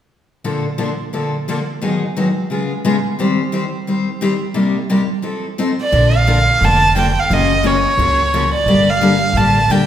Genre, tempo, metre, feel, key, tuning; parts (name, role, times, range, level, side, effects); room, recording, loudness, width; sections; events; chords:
acoustic string swing (jazz manouche); 175 BPM; 4/4; swing 62% on 8ths; Bb major; A4 = 440 Hz
picked steel-string acoustic guitar; accompaniment; 0.4-9.8 s; Ab2 to C5; -17 LUFS; left 2 dB
warm violin; melody; 5.8-9.9 s; Db5 to A5; -14 LUFS; right 2 dB
upright bass; bass; 5.9-9.9 s; F1 to Db2; -17 LUFS; right 1 dB
wet recital hall reverb, RT60 1.5 s; recorded in a church or concert hall; -14 LUFS; side -10 dB against mid
0.4-5.9 A section; 5.9-9.9 B section
0.4 Bbmaj7; 1.8 Abm7; 2.5 Db7; 3.2 Eb6; 4.5 Cm7; 5.2 F7; 5.9 Bb; 7.3 Gbmaj7; 8.7 Gm